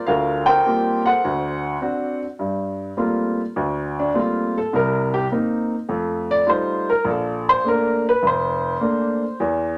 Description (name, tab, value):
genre	solo jazz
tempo	103 BPM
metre	4/4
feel	swing 69% on 8ths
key	G minor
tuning	A4 = 439 Hz
part	warm upright piano	solo	0.0-9.8 s	F1 to G5	-21 LUFS	equal	none
room	moderate studio reverb, RT60 0.7 s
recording	none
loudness	-21 LUFS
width	mono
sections	0.0-2.4 A section; 2.4-9.8 B section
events	upright piano solo 2.4-9.8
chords	0.0 Gm11; 1.2 D7; 2.4 Gm11; 4.7 Cm7; 5.9 F9; 7.1 Bbmaj7